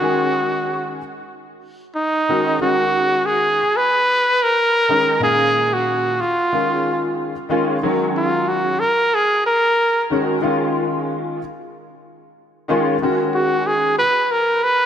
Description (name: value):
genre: jazz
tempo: 92 BPM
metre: 4/4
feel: swing 55% on 16ths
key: Eb minor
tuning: A4 = 440 Hz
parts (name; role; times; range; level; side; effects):
- breathy trumpet; melody; 0.0-14.9 s; Eb4 to Cb5; -17 LUFS; equal; none
- warm grand piano; accompaniment; 0.0-14.0 s; Bb2 to F5; -21 LUFS; left 1 dB; ensemble chorus
room: wet lush hall reverb, RT60 3.0 s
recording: bright 1980s-style digital production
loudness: -16 LUFS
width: side -9 dB against mid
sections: 0.0-7.8 A section; 7.8-14.9 B section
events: trumpet solo 7.8-14.9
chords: 0.0 Ab7sus4; 5.2 Bbm7; 6.5 Db; 7.8 Ebm9; 13.0 Ab7sus4